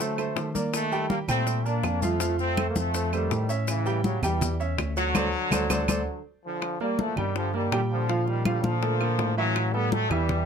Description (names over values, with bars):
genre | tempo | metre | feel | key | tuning
latin, salsa | 163 BPM | 4/4 | straight | G minor | A4 = 436 Hz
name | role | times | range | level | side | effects
brilliant trombone section | melody | 0.0-10.5 s | C#3 to D4 | -29 LUFS | left 1 dB | none
clear baby grand piano | accompaniment | 0.0-10.4 s | E3 to G5 | -30 LUFS | right 4 dB | none
bell-like tine electric piano | bass | 0.0-10.5 s | D2 to Eb3 | -28 LUFS | left 1 dB | medium stereo tremolo
bongos | percussion | 0.0-10.5 s | none | -35 LUFS | left 8 dB | none
congas | percussion | 0.0-10.5 s | none | -31 LUFS | left 1 dB | none
maracas | percussion | 0.0-6.0 s | none | -38 LUFS | left 5 dB | none
claves | percussion | 0.2-10.3 s | none | -35 LUFS | right 6 dB | none
room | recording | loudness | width
light reverb | close, detailed microphones | -24 LUFS | side -7 dB against mid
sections
0.0-6.6 A section; 6.6-10.5 B section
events
band accent 5.1-6.6; drum fill 5.7-6.6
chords
0.0 D7; 0.7 Ebmaj7; 2.2 F7; 3.7 A7; 5.1 D7; 6.6 Gm7; 8.1 Bbmaj7; 9.6 A5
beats
0.00 0.37 | 0.73 1.10 1.47 1.84 | 2.21 2.58 2.94 3.31 | 3.68 4.05 4.41 4.78 | 5.15 5.52 5.88 6.25 | 6.62 6.99 7.35 7.72 | 8.09 8.46 8.82 9.19 | 9.56 9.93 10.29